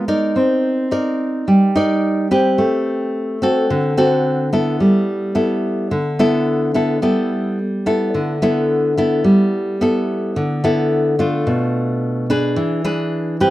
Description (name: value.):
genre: bossa nova.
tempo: 108 BPM.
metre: 4/4.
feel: straight.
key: G major.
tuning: A4 = 440 Hz.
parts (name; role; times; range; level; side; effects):
nylon-string guitar; solo; 0.0-13.5 s; B2 to D5; -15 LUFS; equal; none.
room: light reverb.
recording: dark, warm production.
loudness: -15 LUFS.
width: side -15 dB against mid.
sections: 0.0-9.2 A section; 9.2-13.5 B section.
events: none.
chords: 0.4 Cm9; 2.6 Am9; 3.7 D7; 4.8 G69; 11.5 Bm7b5; 12.6 E7.